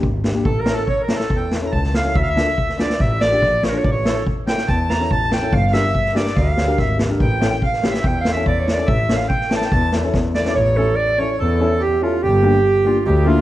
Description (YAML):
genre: klezmer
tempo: 143 BPM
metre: 4/4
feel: straight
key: A phrygian dominant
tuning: A4 = 440 Hz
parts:
  - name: dark upright piano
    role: accompaniment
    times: 0.0-13.4 s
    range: Bb3 to C#5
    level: -24 LUFS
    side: left 3 dB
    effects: none
  - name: warm double bass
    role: bass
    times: 0.0-13.4 s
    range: G1 to E2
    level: -21 LUFS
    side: equal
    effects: none
  - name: street-band drum kit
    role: drums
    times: 0.0-10.5 s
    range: kick drum, snare drum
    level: -21 LUFS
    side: equal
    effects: none
  - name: warm clarinet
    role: melody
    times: 0.4-13.4 s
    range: F4 to Bb5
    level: -21 LUFS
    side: right 2 dB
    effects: slapback echo
  - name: accordion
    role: second line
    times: 0.5-13.4 s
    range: F4 to Bb5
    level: -25 LUFS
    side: right 1 dB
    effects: none
room: moderate recital hall reverb, RT60 1.6 s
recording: dark, warm production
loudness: -15 LUFS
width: side -14 dB against mid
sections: 0.0-10.6 A section; 10.6-13.4 B section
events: clarinet solo 0.0-10.6; drum fill 10.1-10.6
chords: 0.5 A; 2.2 Dm; 3.8 A; 5.5 Gm; 7.2 A; 12.2 Gm